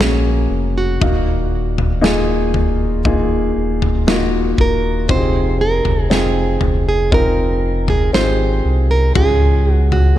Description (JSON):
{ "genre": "pop ballad", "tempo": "59 BPM", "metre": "4/4", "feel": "straight", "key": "unclear", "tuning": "A4 = 440 Hz", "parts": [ { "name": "nylon-string guitar", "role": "melody", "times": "0.0-10.2 s", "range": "Gb4 to C5", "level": "-20 LUFS", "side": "right 3 dB", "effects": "none" }, { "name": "dark grand piano", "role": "accompaniment", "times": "0.0-10.2 s", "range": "Ab2 to F5", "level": "-19 LUFS", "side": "left 2 dB", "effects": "none" }, { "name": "sub bass with octave", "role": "bass", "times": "0.0-10.2 s", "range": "Eb1 to Db2", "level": "-18 LUFS", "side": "equal", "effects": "none" }, { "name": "modern studio drum kit", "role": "drums", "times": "0.0-10.2 s", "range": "kick drum, snare drum, toms", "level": "-19 LUFS", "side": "equal", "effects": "none" } ], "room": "light reverb, small room ambience", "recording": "dark, warm production", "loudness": "-13 LUFS", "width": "side -13 dB against mid", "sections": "0.0-10.2 A section", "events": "none", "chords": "0.0 Gbadd9; 1.0 Ebmadd9; 5.1 Fm7; 9.2 Db", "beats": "0.00 | 1.02 2.04 3.06 4.07 | 5.09 6.11 7.12 8.14 | 9.16 10.17" }